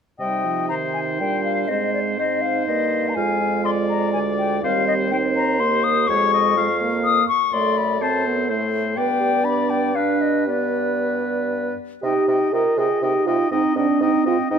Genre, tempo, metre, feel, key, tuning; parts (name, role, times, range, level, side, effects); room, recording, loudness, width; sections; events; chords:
quick classical-period movement for wind quintet; 122 BPM; 3/4; rubato; C minor; A4 = 439 Hz
concert flute; melody; 0.2-14.6 s; D5 to Eb6; -23 LUFS; left 7 dB
clear oboe; second line; 0.2-14.6 s; B4 to F5; -26 LUFS; left 2 dB
warm French horn; accompaniment; 0.2-14.6 s; Eb3 to Bb4; -24 LUFS; right 2 dB
warm clarinet; accompaniment; 0.2-14.6 s; C4 to B4; -28 LUFS; right 11 dB
mellow bassoon; bass; 0.2-14.6 s; D2 to C3; -26 LUFS; right 2 dB
moderate scoring stage reverb, RT60 1.7 s; close, detailed microphones; -18 LUFS; side -7 dB against mid
0.2-12.0 A section; 12.0-14.6 A section
0.2 Cm; 1.7 Abmaj7; 3.2 Ddim/F; 4.6 Cm/Eb; 6.1 Db/F; 7.5 F#dim; 9.0 G; 12.0 Cm; 13.5 Abmaj7